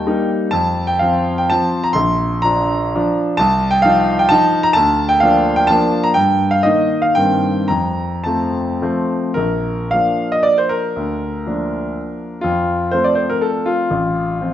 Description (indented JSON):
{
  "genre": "classical, romantic triple-time dance for piano with dotted rhythms",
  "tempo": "102-141 BPM",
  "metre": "3/4",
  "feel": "rubato",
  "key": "Bb major",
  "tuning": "A4 = 440 Hz",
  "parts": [
    { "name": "warm grand piano", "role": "solo", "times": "0.0-14.5 s", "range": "A1 to C6", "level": "-14 LUFS", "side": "equal", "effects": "none" }
  ],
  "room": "moderate recital hall reverb, RT60 1.5 s",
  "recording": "recorded in a church or concert hall, nothing above 7.9 kHz",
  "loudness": "-14 LUFS",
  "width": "side -11 dB against mid",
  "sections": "0.0-9.3 A section; 9.3-14.5 B section",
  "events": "none",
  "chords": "0.0 Eb; 0.5 F5; 2.0 Bb; 3.4 F5/C; 4.8 Bb/D; 6.2 Eb/G; 7.2 Cm7/G; 7.7 F; 9.3 Bb; 10.9 Bb/D; 12.4 F; 13.9 F/A",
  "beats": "0.05 | 0.53 1.01 1.50 | 1.96 2.44 2.94 | 3.38 3.84 4.32 | 4.77 5.23 5.70 | 6.16 6.64 7.16 | 7.68 8.24 8.80 | 9.34 9.91 10.44 | 10.95 11.46 11.96 | 12.43 12.92 13.44 | 13.91 14.41"
}